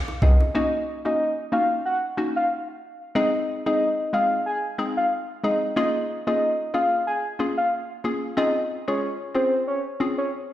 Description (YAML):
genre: dancehall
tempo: 92 BPM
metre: 4/4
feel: swing 56% on 16ths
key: unclear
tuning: A4 = 440 Hz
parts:
  - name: bongos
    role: percussion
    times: 0.1-0.5 s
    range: none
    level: -39 LUFS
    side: right 6 dB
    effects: none
  - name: soft octave-layered synth lead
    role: melody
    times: 0.2-10.3 s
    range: C5 to Ab5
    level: -24 LUFS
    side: equal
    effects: chorus, tape echo
  - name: hollow square pluck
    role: accompaniment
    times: 0.2-10.2 s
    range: Ab3 to Ab4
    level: -27 LUFS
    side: left 2 dB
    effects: chorus
room: moderate lush hall reverb, RT60 2.1 s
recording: played on a big sound system in a bare room, stone room reverb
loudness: -21 LUFS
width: side -13 dB against mid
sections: 0.5-10.5 A section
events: none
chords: 0.0 Dbmaj7; 0.5 Ebm7; 3.2 Ab; 5.8 Bbm7; 8.4 Dbmaj7